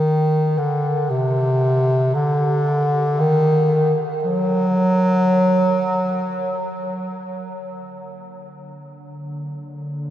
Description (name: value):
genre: ambient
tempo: free time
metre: none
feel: none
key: G harmonic minor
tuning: A4 = 439 Hz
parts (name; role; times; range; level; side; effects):
- mellow bass clarinet; melody; 0.0-6.9 s; C3 to F#3; -17 LUFS; equal; diffuse ambient delay
- sweeping resonant pad; sustained chords; 7.4-10.1 s; D3 to Bb3; -32 LUFS; equal; lush chorus
room: wet huge ambient reverb, RT60 8.6 s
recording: cassette tape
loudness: -16 LUFS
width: side -12 dB against mid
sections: 0.0-7.4 A section; 7.4-10.1 B section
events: none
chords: 0.0 N.C.; 7.4 Gm (rootless)